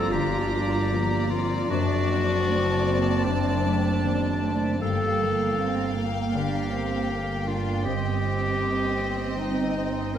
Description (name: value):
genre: cinematic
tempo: 78 BPM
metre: 4/4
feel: rubato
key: G minor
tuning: A4 = 439 Hz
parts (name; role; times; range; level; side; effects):
- warm chamber violin section; melody; 0.0-10.2 s; G5 to Bb5; -36 LUFS; left 4 dB; none
- clear clarinet; second line; 0.0-10.2 s; D4 to Bb4; -28 LUFS; equal; none
- warm symphonic violin section; second line; 0.0-10.2 s; D5 to F5; -35 LUFS; left 4 dB; none
- dark symphonic viola section; accompaniment; 0.0-10.2 s; Bb3 to F4; -32 LUFS; right 1 dB; none
- concert harp; arpeggios; 0.0-10.2 s; F#2 to G5; -30 LUFS; left 4 dB; none
- warm symphonic cello section; bass; 0.0-10.2 s; F3 to D4; -31 LUFS; right 4 dB; none
- warm symphonic double bass section; bass; 0.0-10.2 s; F#1 to G1; -30 LUFS; right 3 dB; none
room: wet scoring stage reverb, RT60 1.7 s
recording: none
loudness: -22 LUFS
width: side -9 dB against mid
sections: 0.0-10.2 A section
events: none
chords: 0.0 Gm7; 1.7 D7/F#; 4.8 Gm7; 7.9 Cm7/G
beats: 0.14 0.92 | 1.71 2.49 3.27 4.04 | 4.83 5.59 6.35 7.11 | 7.86 8.61 9.37 10.16